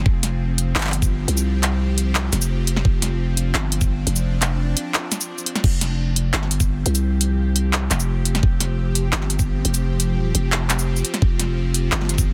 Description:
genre	half-time drum and bass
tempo	172 BPM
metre	4/4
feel	half-time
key	unclear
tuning	A4 = 440 Hz
part	bowed-like drone	sustained chords	0.0-12.3 s	F3 to G4	-33 LUFS	equal	built-in reverb, phaser, sidechain pumping
part	growling 808-style bass	bass	0.0-12.3 s	F1 to C2	-23 LUFS	equal	none
part	electronic kick drum	drums	0.1-12.3 s	none	-21 LUFS	equal	none
part	drum and bass drum kit	drums	0.2-12.2 s	crash cymbal, handclaps, hi-hat, shaker, snare drum	-26 LUFS	equal	soft clipping on snare
room	little or no reverb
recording	dense, heavily limited modern master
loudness	-21 LUFS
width	mono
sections	0.0-5.6 A section; 5.6-12.3 A section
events	drop 0.0-5.6, 5.6-12.3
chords	0.0 F5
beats	| 0.06 0.41 0.76 1.10 | 1.45 1.80 2.15 2.50 | 2.85 3.20 3.55 3.90 | 4.24 4.59 4.94 5.29 | 5.64 5.99 6.34 6.69 | 7.04 7.38 7.73 8.08 | 8.43 8.78 9.13 9.48 | 9.83 10.17 10.52 10.87 | 11.22 11.57 11.92 12.27

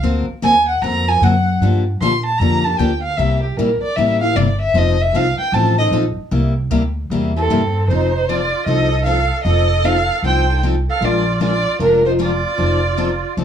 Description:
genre	acoustic string swing (jazz manouche)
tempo	153 BPM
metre	4/4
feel	swing 63% on 8ths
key	F mixolydian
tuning	A4 = 440 Hz
part	dark violin	melody	0.0-13.3 s	G4 to C6	-18 LUFS	right 1 dB	none
part	picked steel-string acoustic guitar	accompaniment	0.0-13.4 s	C3 to A#4	-20 LUFS	left 4 dB	none
part	upright bass	bass	0.0-13.4 s	F1 to Bb2	-18 LUFS	equal	none
part	musette accordion	second line	7.4-13.3 s	C4 to C5	-25 LUFS	right 9 dB	none
room	light reverb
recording	small room ambience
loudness	-14 LUFS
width	side -9 dB against mid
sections	0.0-7.9 A section; 7.9-13.4 B section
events	violin solo 0.0-7.9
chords	0.0 D7alt; 1.6 Gm7; 3.2 C7; 4.7 F7; 6.3 C7; 7.9 F7; 11.0 Bb7; 12.6 F7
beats	| 0.03 0.42 0.82 1.21 | 1.60 2.00 2.39 2.78 | 3.17 3.57 3.96 4.35 | 4.74 5.13 5.53 5.92 | 6.31 6.70 7.09 7.48 | 7.88 8.27 8.66 9.05 | 9.45 9.84 10.23 10.62 | 11.02 11.41 11.80 12.19 | 12.58 12.98 13.37

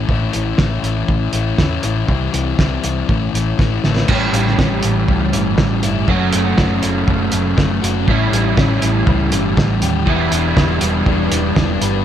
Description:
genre	indie rock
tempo	120 BPM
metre	4/4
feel	straight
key	unclear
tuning	A4 = 438 Hz
part	sludgy distorted guitar	riff	0.0-12.0 s	A2 to B4	-20 LUFS	left 8 dB	overdrive
part	hollow-body short-scale fingered electric bass	bass	0.0-12.0 s	E1 to E2	-20 LUFS	equal	none
part	cloth-damped thuddy drum kit	drums	0.1-11.9 s	crash cymbal, hi-hat, kick drum, snare drum	-17 LUFS	right 1 dB	none
part	overdriven electric guitar	riff	4.1-12.0 s	A2 to G4	-19 LUFS	right 6 dB	ensemble chorus
room	light reverb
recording	none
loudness	-14 LUFS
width	side -10 dB against mid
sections	0.0-4.1 A section; 4.1-12.0 B section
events	drum fill 3.6-4.1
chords	0.0 A; 2.1 C; 3.1 A; 4.1 A7; 6.1 F#m; 8.1 A7; 10.1 Em7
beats	| 0.11 0.60 1.10 1.60 | 2.10 2.60 3.10 3.60 | 4.10 4.60 5.10 5.59 | 6.09 6.59 7.09 7.59 | 8.09 8.58 9.08 9.58 | 10.07 10.57 11.07 11.57

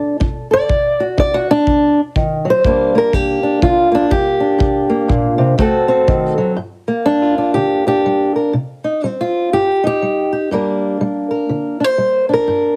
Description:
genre	acoustic country blues, solo or duo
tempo	122 BPM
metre	4/4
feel	swing 60% on 8ths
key	G harmonic minor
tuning	A4 = 439 Hz
part	fingerpicked old ladder-braced acoustic guitar	melody	0.0-12.8 s	G2 to D5	-16 LUFS	equal	none
part	kick drum	drums	0.2-6.2 s	none	-22 LUFS	equal	none
room	light reverb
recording	heavily compressed radio sound, multiband compression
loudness	-15 LUFS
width	mono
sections	0.0-6.6 A section; 6.6-12.8 B section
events	steel-string acoustic guitar solo 0.0-6.6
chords	0.0 D; 2.6 Gm; 5.6 D7; 6.6 Gm; 8.5 Cm; 10.5 Gm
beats	0.21 | 0.69 1.18 1.67 2.16 | 2.65 3.14 3.62 4.11 | 4.60 5.09 5.58 6.08 | 6.57 7.06 7.55 8.04 | 8.54 9.03 9.52 10.02 | 10.51 11.00 11.49 11.99 | 12.48

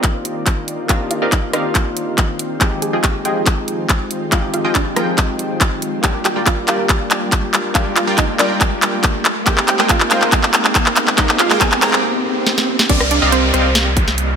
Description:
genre	future bass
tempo	140 BPM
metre	4/4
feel	half-time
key	C minor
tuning	A4 = 440 Hz
part	wide unison pluck	melody	0.0-14.4 s	Bb3 to Bb5	-23 LUFS	moving between left 4 dB and right 3 dB	auto-pan, sidechain pumping, digital delay
part	overdriven tine electric piano	accompaniment	0.0-12.9 s	Ab3 to G5	-25 LUFS	left 2 dB	sidechain pumping, tape echo
part	ethereal airy pad	sustained chords	0.0-14.4 s	Eb3 to G5	-30 LUFS	left 1 dB	ensemble chorus, built-in reverb, phaser, sidechain pumping
part	supersaw stab	riff	0.0-14.4 s	F3 to G5	-22 LUFS	right 1 dB	sidechain pumping, low-pass filter, tape echo
part	electronic kick drum	drums	0.0-14.1 s	none	-18 LUFS	equal	none
part	trap drum kit	drums	0.0-14.3 s	crash cymbal, handclaps, hi-hat, rim click, snare drum	-16 LUFS	equal	none
part	riser, swell and downlifter	sound effects	2.6-14.4 s	none	-24 LUFS	right 1 dB	none
part	saturated sub bass	bass	12.9-14.4 s	C2	-19 LUFS	equal	sidechain pumping
room	moderate digital room reverb, RT60 1.0 s, digital ambience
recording	none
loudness	-13 LUFS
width	side -7 dB against mid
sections	0.0-12.9 A section; 12.9-14.4 B section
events	build-up 0.0-12.9; drum fill 0.0-12.0, 12.5-12.9; filter sweep on supersaw synth 0.0-12.9; filter sweep on synth pluck 0.0-12.9; riser 2.6-12.9; break 12.0-12.9; swell 12.0-12.9; drop 12.9-14.4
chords	0.0 Cm11; 2.6 Fm7; 6.0 Gm7; 9.2 Abmaj7; 12.9 Cm11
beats	0.04 0.47 | 0.89 1.32 1.75 2.18 | 2.61 3.04 3.46 3.89 | 4.32 4.75 5.18 5.61 | 6.04 6.46 6.89 7.32 | 7.75 8.18 8.61 9.04 | 9.46 9.89 10.32 10.75 | 11.18 11.61 12.04 12.46 | 12.89 13.32 13.75 14.18

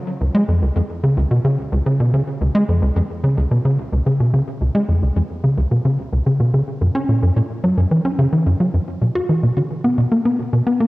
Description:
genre	ambient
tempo	109 BPM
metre	4/4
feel	straight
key	unclear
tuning	A4 = 440 Hz
part	tight sequencer bass	solo	0.2-10.9 s	C#2 to F#4	-15 LUFS	equal	cassette tape, tape echo
room	wet spring reverb, RT60 2.5 s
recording	home recording on cassette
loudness	-16 LUFS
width	side -19 dB against mid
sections	0.0-8.9 A section; 8.9-10.9 B section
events	none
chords	none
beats	| 0.07 0.62 1.17 1.72 | 2.27 2.82 3.37 3.92 | 4.47 5.03 5.58 6.13 | 6.68 7.23 7.78 8.33 | 8.88 9.43 9.98 10.53

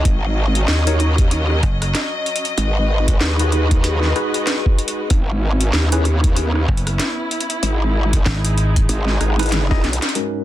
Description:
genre	glitch hop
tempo	95 BPM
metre	4/4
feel	swing 59% on 16ths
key	unclear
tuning	A4 = 440 Hz
part	muted studio string section	sustained chords	0.0-10.4 s	G#2 to D#5	-24 LUFS	equal	sidechain pumping, low-pass filter
part	barky tine electric piano	stabs	0.0-10.4 s	G#3 to D#5	-24 LUFS	left 1 dB	medium stereo tremolo, sidechain pumping, low-pass filter, ping-pong delay
part	growl bass	bass	0.0-10.0 s	G#1 to D#2	-17 LUFS	equal	chorus, tube saturation
part	drum and bass drum kit	drums	0.1-10.3 s	hi-hat, rim click, snare drum, toms	-23 LUFS	equal	none
part	electronic kick drum	drums	0.1-9.8 s	none	-16 LUFS	equal	none
part	dry thumbed slap bass	bass	1.6-1.9, 6.7-8.9 s	F#1 to G#1	-18 LUFS	equal	none
room	light reverb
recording	dense, heavily limited modern master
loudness	-15 LUFS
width	side -14 dB against mid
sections	0.0-10.2 A section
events	drum fill 9.5-10.2; band accent 10.0-10.3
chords	0.1 D#m7/G#; 2.6 G#m7; 5.1 C#m7/G#; 7.6 Emaj7/G#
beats	| 0.05 0.68 1.31 1.95 | 2.58 3.21 3.84 4.47 | 5.10 5.74 6.37 7.00 | 7.63 8.26 8.89 9.52 | 10.16

